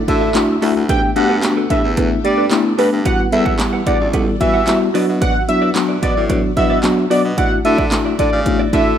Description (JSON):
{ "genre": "dance-pop", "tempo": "111 BPM", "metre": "4/4", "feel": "straight", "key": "D major", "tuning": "A4 = 440 Hz", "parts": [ { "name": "phased string machine", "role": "sustained chords", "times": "0.0-9.0 s", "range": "B2 to G4", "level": "-29 LUFS", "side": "right 1 dB", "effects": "none" }, { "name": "impact", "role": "sound effects", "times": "0.0-0.9 s", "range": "none", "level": "-39 LUFS", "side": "right 1 dB", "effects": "none" }, { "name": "wide unison lead", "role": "melody", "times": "0.1-9.0 s", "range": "B4 to G5", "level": "-19 LUFS", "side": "right 1 dB", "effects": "ping-pong delay" }, { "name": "mellow tine electric piano", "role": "accompaniment", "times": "0.1-8.9 s", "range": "F#3 to A4", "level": "-18 LUFS", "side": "left 2 dB", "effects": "slow stereo tremolo, sidechain pumping" }, { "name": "direct-recorded clean electric guitar", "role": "riff", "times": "0.1-8.9 s", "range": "D4 to F#5", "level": "-26 LUFS", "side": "right 5 dB", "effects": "lush chorus" }, { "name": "bright baritone saxophone", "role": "bass", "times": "0.1-9.0 s", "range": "C#2 to G3", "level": "-22 LUFS", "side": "right 1 dB", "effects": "sidechain pumping" }, { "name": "punchy analog drum machine", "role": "drums", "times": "0.1-8.9 s", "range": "handclaps, hi-hat, kick drum, snare drum", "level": "-20 LUFS", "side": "right 1 dB", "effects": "none" } ], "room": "light reverb", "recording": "rough home demo mix", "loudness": "-13 LUFS", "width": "side -9 dB against mid", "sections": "0.0-9.0 A section", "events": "impact 0.0-0.9", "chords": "0.0 Dadd9; 0.9 Gadd9; 3.1 Emadd9; 4.9 Bm; 7.4 Dadd9" }